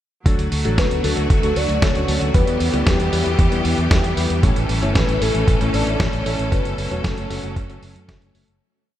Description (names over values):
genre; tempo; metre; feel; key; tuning
italo disco; 115 BPM; 4/4; straight; D major; A4 = 440 Hz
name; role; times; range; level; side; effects
bright studio string section; sustained chords; 0.3-8.6 s; D3 to A4; -26 LUFS; equal; none
warm electric grand piano; stabs; 0.3-8.5 s; F#3 to C#5; -26 LUFS; left 2 dB; analog chorus, diffuse ambient delay
fingered electric bass with an envelope filter; bass; 0.3-8.6 s; E1 to F#2; -22 LUFS; equal; none
dusty soul sampler-style drum kit; drums; 0.3-8.6 s; hi-hat, snare drum; -26 LUFS; right 1 dB; none
electronic kick drum; drums; 0.3-8.2 s; none; -19 LUFS; equal; none
soft octave-layered synth lead; melody; 0.8-8.1 s; G4 to D5; -25 LUFS; left 1 dB; chorus, phaser, diffuse ambient delay
room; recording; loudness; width
moderate huge ambient reverb, RT60 8.6 s; dreamy mix soaked in reverb; -16 LUFS; side -12 dB against mid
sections
0.3-8.6 verse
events
fade-out 5.8-8.6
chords
0.3 D; 2.3 Em; 4.4 A; 6.5 F#m